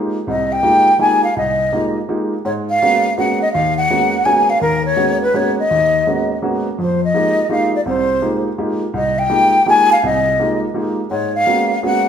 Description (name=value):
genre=jazz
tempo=166 BPM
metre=3/4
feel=swing 65% on 8ths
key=unclear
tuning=A4 = 442 Hz
part: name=warm upright piano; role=accompaniment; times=0.0-12.1 s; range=C2 to G4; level=-19 LUFS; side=right 1 dB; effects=none
part: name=breathy concert flute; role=melody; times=0.3-12.1 s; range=Bb4 to Ab5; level=-14 LUFS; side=left 1 dB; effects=none
room=wet large studio reverb, RT60 1.2 s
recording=band playing live in one room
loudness=-13 LUFS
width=side -8 dB against mid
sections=0.0-12.1 A section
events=none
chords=0.0 Fm11; 2.4 Abm11; 6.8 Fm11; 11.1 Abm11